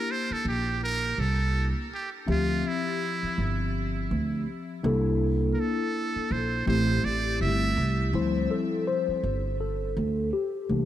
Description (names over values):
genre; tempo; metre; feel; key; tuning
hip hop; 82 BPM; 4/4; swing 58% on 16ths; D minor; A4 = 440 Hz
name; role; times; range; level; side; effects
trumpet with metal mute; melody; 0.0-8.1 s; E4 to E5; -31 LUFS; right 3 dB; diffuse ambient delay
mellow tine electric piano; accompaniment; 0.0-10.9 s; E3 to E5; -29 LUFS; left 3 dB; phaser
upright bass; bass; 0.3-10.9 s; G1 to D2; -27 LUFS; right 1 dB; none
room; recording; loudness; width
moderate huge ambient reverb, RT60 5.0 s; dreamy mix soaked in reverb; -25 LUFS; side -12 dB against mid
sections
0.0-8.1 A section; 8.1-10.9 A section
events
muted trumpet solo 0.0-8.1; tine electric piano solo 8.1-10.9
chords
0.0 C13; 2.3 Dm11; 4.8 C13; 6.7 Am7; 8.1 Dm11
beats
0.08 0.82 1.55 | 2.28 3.01 3.74 4.47 | 5.21 5.94 6.67 7.40 | 8.13 8.87 9.60 10.33